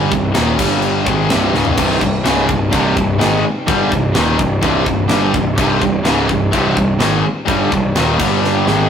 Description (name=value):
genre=heavy metal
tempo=126 BPM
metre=4/4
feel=straight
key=C minor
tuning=A4 = 440 Hz
part: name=rich studio string section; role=sustained chords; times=0.0-8.9 s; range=C3 to G4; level=-28 LUFS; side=left 1 dB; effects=none
part: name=sludgy distorted guitar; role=riff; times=0.0-8.9 s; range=C2 to Ab3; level=-18 LUFS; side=right 5 dB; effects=overdrive
part: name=tight distorted guitar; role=riff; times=0.0-8.9 s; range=C2 to Ab3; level=-18 LUFS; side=left 5 dB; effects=distortion
part: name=fuzz picked electric bass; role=bass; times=0.0-8.9 s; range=C1 to Ab1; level=-20 LUFS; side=equal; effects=overdrive
part: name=tight metal drum kit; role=drums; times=0.1-8.8 s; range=crash cymbal, kick drum, snare drum, toms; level=-20 LUFS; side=equal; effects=none
part: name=distorted electric guitar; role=riff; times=1.8-8.9 s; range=C2 to Ab3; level=-21 LUFS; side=left 1 dB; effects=overdrive
room=moderate studio reverb, RT60 0.6 s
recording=rough rehearsal-room recording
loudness=-12 LUFS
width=side -8 dB against mid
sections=0.0-8.9 A section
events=drum fill 1.5, 8.4-8.9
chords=0.0 Cm; 0.6 G5; 1.1 Cm; 8.2 G5